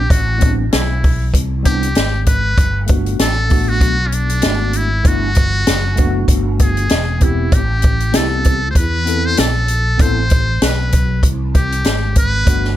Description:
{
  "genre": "hip hop, jazz-hop",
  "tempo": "97 BPM",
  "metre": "4/4",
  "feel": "swing 57% on 16ths",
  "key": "A dorian",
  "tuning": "A4 = 440 Hz",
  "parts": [
    { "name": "trumpet with metal mute", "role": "melody", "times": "0.0-12.7 s", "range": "C#4 to C5", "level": "-20 LUFS", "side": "equal", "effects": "none" },
    { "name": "bright tine electric piano", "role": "accompaniment", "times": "0.0-12.8 s", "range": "G3 to A4", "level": "-23 LUFS", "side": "left 1 dB", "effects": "medium stereo tremolo" },
    { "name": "sustaining fretless electric bass", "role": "bass", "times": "0.0-12.8 s", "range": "E1 to E2", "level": "-18 LUFS", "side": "equal", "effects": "ensemble chorus" },
    { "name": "open jazz drum kit", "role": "drums", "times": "0.1-12.7 s", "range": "hi-hat, kick drum, snare drum", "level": "-15 LUFS", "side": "equal", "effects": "none" }
  ],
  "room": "studio ambience",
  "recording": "none",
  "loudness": "-13 LUFS",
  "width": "side -13 dB against mid",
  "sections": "0.0-12.8 A section",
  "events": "none",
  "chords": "0.0 Am9; 2.6 Gmaj9; 6.9 E; 7.5 Am9"
}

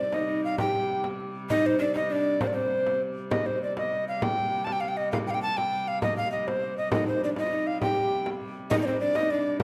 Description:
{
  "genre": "medieval dance",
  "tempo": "133 BPM (dotted quarters)",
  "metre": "6/8",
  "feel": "straight",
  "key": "C minor",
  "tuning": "A4 = 439 Hz",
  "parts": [
    { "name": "tenor recorder", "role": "melody", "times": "0.0-9.6 s", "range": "C5 to A5", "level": "-30 LUFS", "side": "equal", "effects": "none" },
    { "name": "breathy large pan pipes", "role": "second line", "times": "0.0-3.0, 6.9-9.6 s", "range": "C4 to G4", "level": "-32 LUFS", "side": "equal", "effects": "none" },
    { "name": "rich hurdy-gurdy", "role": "drone", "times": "0.0-9.6 s", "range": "C3 to G3", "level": "-40 LUFS", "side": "equal", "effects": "none" },
    { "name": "frame drum", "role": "percussion", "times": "0.1-9.6 s", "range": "none", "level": "-35 LUFS", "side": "equal", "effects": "none" }
  ],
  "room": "wet recital hall reverb, RT60 1.7 s",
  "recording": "none",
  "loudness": "-27 LUFS",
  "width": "mono",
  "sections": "0.0-3.3 A section; 3.3-9.6 A section",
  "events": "none",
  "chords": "none"
}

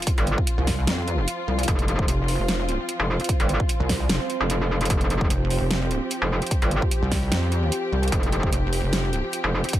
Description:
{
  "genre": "heavy wobble dubstep",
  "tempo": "149 BPM",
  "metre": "4/4",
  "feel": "swing 54% on 16ths, half-time",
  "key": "unclear",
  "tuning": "A4 = 440 Hz",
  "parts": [
    { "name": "dark studio string section", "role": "sustained chords", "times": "0.0-9.8 s", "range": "F3 to G4", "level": "-29 LUFS", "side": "equal", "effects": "sidechain pumping" },
    { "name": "dubstep drum kit", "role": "drums", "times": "0.0-9.8 s", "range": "hi-hat, snare drum", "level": "-28 LUFS", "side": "right 1 dB", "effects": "none" },
    { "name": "electronic kick drum", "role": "drums", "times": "0.1-9.8 s", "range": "none", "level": "-24 LUFS", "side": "equal", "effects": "none" },
    { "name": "metallic wobble bass", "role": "bass", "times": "0.2-9.6 s", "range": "F1 to G1", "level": "-23 LUFS", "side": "equal", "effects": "distortion, chorus, overdrive" },
    { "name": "pulsing pluck wobble bass", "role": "bass", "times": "0.6-9.2 s", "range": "F1 to F2", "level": "-24 LUFS", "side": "equal", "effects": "chorus, overdrive" }
  ],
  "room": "digital ambience",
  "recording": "none",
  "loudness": "-21 LUFS",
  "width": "side -13 dB against mid",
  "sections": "0.0-9.8 A section",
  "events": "none",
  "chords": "0.0 F5"
}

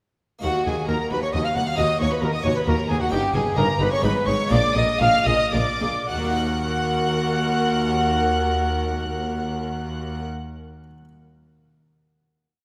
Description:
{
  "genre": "classical, baroque-style concerto movement with solo episodes",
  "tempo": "106-135 BPM",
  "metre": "3/4",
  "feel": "straight",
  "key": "Eb minor",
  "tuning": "A4 = 440 Hz",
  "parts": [
    { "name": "dark trumpet", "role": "melody", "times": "0.4-10.2 s", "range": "Gb4 to Gb5", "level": "-28 LUFS", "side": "equal", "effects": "none" },
    { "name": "rich chamber violin section", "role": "melody", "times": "0.4-10.2 s", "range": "Gb5 to Gb6", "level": "-32 LUFS", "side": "equal", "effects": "none" },
    { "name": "warm chamber violin section", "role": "second line", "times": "0.4-10.2 s", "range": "Gb4 to Gb5", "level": "-29 LUFS", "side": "equal", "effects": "none" },
    { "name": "harpsichord", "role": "accompaniment", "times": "0.4-11.1 s", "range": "Eb2 to Bb4", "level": "-33 LUFS", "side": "equal", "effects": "none" },
    { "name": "warm symphonic viola section", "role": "accompaniment", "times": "0.4-10.2 s", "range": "Eb4 to Bb4", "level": "-35 LUFS", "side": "equal", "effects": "none" },
    { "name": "clear studio double bass section", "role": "bass", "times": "0.4-10.2 s", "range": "G1 to Eb2", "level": "-30 LUFS", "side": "equal", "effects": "none" },
    { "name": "rich chamber cello section", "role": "bass", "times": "0.4-10.2 s", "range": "Eb2 to Bb2", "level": "-30 LUFS", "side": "equal", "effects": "none" }
  ],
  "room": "wet concert hall reverb, RT60 2.4 s",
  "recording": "none",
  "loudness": "-22 LUFS",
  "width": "mono",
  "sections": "0.4-6.1 ritornello; 6.1-9.5 final chord",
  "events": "slowing down 2.4-6.1",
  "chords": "0.4 Ebm; 3.1 Eb7/G; 4.0 Abm; 4.5 Bb7; 6.1 Ebm"
}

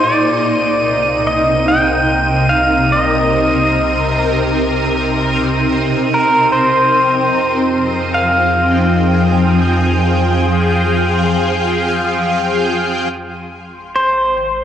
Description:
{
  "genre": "ambient",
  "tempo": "73 BPM",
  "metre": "4/4",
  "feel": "straight",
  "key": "F minor",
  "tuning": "A4 = 440 Hz",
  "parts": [
    { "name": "pedal steel guitar", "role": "melody", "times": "0.0-14.6 s", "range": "Bb4 to G5", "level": "-16 LUFS", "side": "equal", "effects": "cassette tape, tape echo" },
    { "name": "shimmering ambient pad", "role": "sustained chords", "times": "0.0-14.6 s", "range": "C3 to G5", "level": "-15 LUFS", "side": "equal", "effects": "chorus, built-in reverb, phaser, cassette tape" },
    { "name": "deep rumbling drone", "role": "bass", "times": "0.9-14.6 s", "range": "Ab1 to F2", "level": "-22 LUFS", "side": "equal", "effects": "built-in reverb" },
    { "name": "wind-like tuned noise texture", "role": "texture", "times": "0.0-14.6 s", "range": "C6 to Eb7", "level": "-24 LUFS", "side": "right 2 dB", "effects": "built-in reverb, cassette tape" }
  ],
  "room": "wet spring reverb, RT60 2.6 s",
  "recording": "home recording on cassette",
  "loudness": "-12 LUFS",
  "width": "side -9 dB against mid",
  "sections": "0.0-13.1 A section; 13.1-14.6 B section",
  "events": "none",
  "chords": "0.0 Cm7; 6.5 Fm7; 13.1 Abmaj7"
}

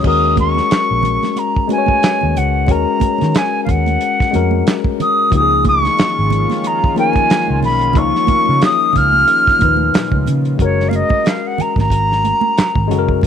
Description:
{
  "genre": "R&B, neo-soul",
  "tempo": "91 BPM",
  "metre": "4/4",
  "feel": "swing 57% on 16ths",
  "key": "unclear",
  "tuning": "A4 = 440 Hz",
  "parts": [
    { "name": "silver concert flute", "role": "melody", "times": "0.0-13.3 s", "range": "C#5 to E#6", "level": "-15 LUFS", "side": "equal", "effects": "slapback echo" },
    { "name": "mellow tine electric piano", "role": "accompaniment", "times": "0.0-13.3 s", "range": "A#2 to C#5", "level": "-20 LUFS", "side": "left 15 dB", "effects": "overdrive" },
    { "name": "warm soul drum kit", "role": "drums", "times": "0.0-13.3 s", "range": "crash cymbal, handclaps, hi-hat, kick drum, snare drum", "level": "-17 LUFS", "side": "right 2 dB", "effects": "none" },
    { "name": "congas", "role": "percussion", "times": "0.0-13.3 s", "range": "none", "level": "-24 LUFS", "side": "right 17 dB", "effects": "none" },
    { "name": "vintage muted fingered electric bass", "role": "bass", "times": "0.1-13.3 s", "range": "F#1 to D#3", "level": "-18 LUFS", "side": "right 1 dB", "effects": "none" },
    { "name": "chorused pulse-width pad", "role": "sustained chords", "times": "5.3-10.6 s", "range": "D#3 to E#4", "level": "-25 LUFS", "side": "right 1 dB", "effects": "none" }
  ],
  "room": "small room ambience",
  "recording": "1960s-style stereo with parts hard left and right",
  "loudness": "-12 LUFS",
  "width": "side -8 dB against mid",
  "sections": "0.0-10.6 A section; 10.6-13.3 B section",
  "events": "flute solo 10.6-13.3",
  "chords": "0.0 D#m7; 5.3 C#13; 10.6 F#add9"
}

